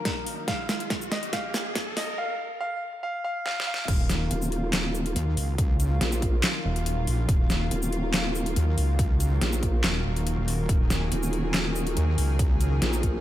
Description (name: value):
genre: heavy wobble dubstep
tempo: 141 BPM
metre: 4/4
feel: half-time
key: Eb minor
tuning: A4 = 439 Hz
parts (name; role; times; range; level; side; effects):
- clear baby grand piano; melody; 0.0-3.9 s; Bb4 to F5; -32 LUFS; equal; ping-pong delay
- lush unison pad; sustained chords; 0.0-13.2 s; Eb3 to F5; -34 LUFS; left 1 dB; chorus, sidechain pumping
- riser; sound effects; 0.0-2.2 s; none; -37 LUFS; right 1 dB; none
- dubstep drum kit; drums; 0.1-13.1 s; crash cymbal, handclaps, hi-hat, shaker, snare drum; -29 LUFS; equal; overdrive
- electronic kick drum; drums; 0.1-13.1 s; none; -26 LUFS; equal; none
- wobble bass; bass; 3.9-12.8 s; Eb1 to Eb2; -25 LUFS; equal; chorus, overdrive
- vowel-sweep wobble bass; bass; 4.3-13.2 s; Eb1 to Bb1; -27 LUFS; equal; chorus, overdrive
room: light reverb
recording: high-pass filter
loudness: -24 LUFS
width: side -13 dB against mid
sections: 0.0-3.9 A section; 3.9-13.2 B section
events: build-up 0.0-3.9; drum fill 0.0-2.2, 3.5-3.9; riser 0.0-2.2; drop 3.9-13.2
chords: 0.0 Ebmadd9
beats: 0.05 | 0.48 0.90 1.33 1.75 | 2.18 2.61 3.03 3.46 | 3.88 4.31 4.73 5.16 | 5.58 6.01 6.43 6.86 | 7.29 7.71 8.14 8.56 | 8.99 9.41 9.84 10.27 | 10.69 11.12 11.54 11.97 | 12.39 12.82